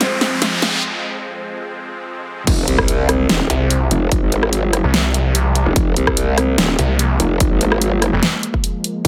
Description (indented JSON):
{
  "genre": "heavy wobble dubstep",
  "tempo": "146 BPM",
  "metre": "4/4",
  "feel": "half-time",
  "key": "F minor",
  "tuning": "A4 = 441 Hz",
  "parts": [
    { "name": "felt-muted upright piano", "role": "melody", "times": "0.0-0.8 s", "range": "C4 to C5", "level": "-28 LUFS", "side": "equal", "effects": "low-pass filter, dub echo" },
    { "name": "supersaw pad", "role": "sustained chords", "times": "0.0-9.1 s", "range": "F2 to C4", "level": "-28 LUFS", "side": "equal", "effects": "phaser, sidechain pumping, low-pass filter" },
    { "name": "big-room dance drum kit", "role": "drums", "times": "0.0-9.1 s", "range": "crash cymbal, hi-hat, rim click, snare drum", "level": "-21 LUFS", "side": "equal", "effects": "none" },
    { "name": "riser and impact", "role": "sound effects", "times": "0.0-4.1 s", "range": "none", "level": "-25 LUFS", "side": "equal", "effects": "none" },
    { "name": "growl bass", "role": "bass", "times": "2.5-9.1 s", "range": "Eb1 to C2", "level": "-19 LUFS", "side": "equal", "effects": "chorus, overdrive" },
    { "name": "electronic kick drum", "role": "drums", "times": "2.5-9.1 s", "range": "none", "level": "-21 LUFS", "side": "equal", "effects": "none" },
    { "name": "snarling distorted saw bass", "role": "bass", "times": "3.5-8.2 s", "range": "F1 to C2", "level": "-18 LUFS", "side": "equal", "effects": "distortion, overdrive" }
  ],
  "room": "little or no reverb",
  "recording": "high-pass filter",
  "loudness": "-17 LUFS",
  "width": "mono",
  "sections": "0.0-2.5 A section; 2.5-9.1 B section",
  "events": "build-up 0.0-2.5; drum fill 0.0-0.8; riser 0.0-0.8; break 0.8-2.5; drop 2.5-9.1; impact 2.5-4.1",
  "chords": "0.0 Fm",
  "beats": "0.01 0.42 | 0.83 1.24 1.65 2.06 | 2.47 2.88 3.29 3.71 | 4.12 4.53 4.94 5.35 | 5.76 6.17 6.58 6.99 | 7.40 7.82 8.23 8.64 | 9.05"
}